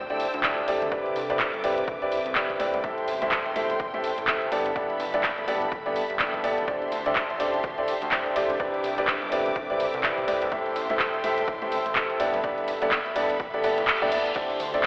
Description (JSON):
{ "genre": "piano house", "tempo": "125 BPM", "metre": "4/4", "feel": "swing 58% on 16ths", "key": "G major", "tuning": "A4 = 440 Hz", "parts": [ { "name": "warm chamber violin section", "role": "sustained chords", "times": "0.0-14.9 s", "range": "G4 to E6", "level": "-33 LUFS", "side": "equal", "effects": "sidechain pumping" }, { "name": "fat analog bass", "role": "bass", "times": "0.0-14.9 s", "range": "D1 to D2", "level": "-36 LUFS", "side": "equal", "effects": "tube saturation, sidechain pumping" }, { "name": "sub drop and reverse cymbal", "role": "sound effects", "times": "0.0-0.9, 13.6-14.4 s", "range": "none", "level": "-35 LUFS", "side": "left 1 dB", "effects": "none" }, { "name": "deep dark ambient pad", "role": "texture", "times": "0.3-14.9 s", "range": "C4 to C6", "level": "-35 LUFS", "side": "equal", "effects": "chorus, built-in reverb, sidechain pumping" }, { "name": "clear grand piano", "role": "riff", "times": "0.1-14.9 s", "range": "G2 to E5", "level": "-26 LUFS", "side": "equal", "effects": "sidechain pumping, tape echo" }, { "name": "punchy analog drum machine", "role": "drums", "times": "0.1-14.9 s", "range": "crash cymbal, handclaps, hi-hat, ride cymbal", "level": "-28 LUFS", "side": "equal", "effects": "small room reverb" }, { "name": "electronic kick drum", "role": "drums", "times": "0.4-14.9 s", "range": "none", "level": "-34 LUFS", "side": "equal", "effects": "small room reverb" }, { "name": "tambourine and congas", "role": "percussion", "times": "14.4-14.9 s", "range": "none", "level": "-44 LUFS", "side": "equal", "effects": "none" } ], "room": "moderate digital room reverb, RT60 1.1 s, digital ambience", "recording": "played on a big sound system in a bare room, stone room reverb, telephone sound", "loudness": "-23 LUFS", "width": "side -28 dB against mid", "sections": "0.0-14.9 A section", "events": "impact 0.0-0.9; reverse cymbal 13.6-14.4", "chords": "0.0 D9sus4; 0.9 Cmaj9; 2.8 Am7; 4.5 G69; 6.7 D9sus4; 8.6 Cmaj9; 10.5 Am7; 12.2 G69; 14.4 D9sus4" }